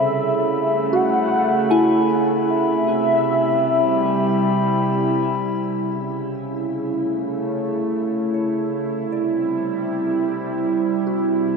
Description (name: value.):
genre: ambient.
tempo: 77 BPM.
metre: 4/4.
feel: straight.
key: unclear.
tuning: A4 = 440 Hz.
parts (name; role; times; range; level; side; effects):
warm velvety synth lead; melody; 0.0-4.8 s; E5 to F#5; -22 LUFS; left 1 dB; chorus, cassette tape, shimmer reverb, diffuse ambient delay.
evolving wavetable pad; sustained chords; 0.0-11.6 s; C3 to A4; -20 LUFS; right 2 dB; chorus, built-in reverb, shimmer reverb.
glass harmonica; texture; 0.0-5.6 s; B5; -28 LUFS; left 6 dB; shimmer reverb.
soft synth bell; arpeggios; 0.9-11.6 s; E4 to G#5; -24 LUFS; equal; chorus, phaser, shimmer reverb, diffuse ambient delay.
room: wet cathedral reverb, RT60 5.1 s.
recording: in a vast, echoing space.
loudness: -18 LUFS.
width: side -5 dB against mid.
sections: 0.0-5.6 A section; 5.6-11.6 B section.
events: none.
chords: 0.0 Aadd9; 2.5 Cmaj7; 5.6 A; 8.7 C.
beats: 0.16 0.94 1.72 | 2.50 3.28 4.06 4.84 | 5.62 6.40 7.18 7.96 | 8.73 9.51 10.29 11.07.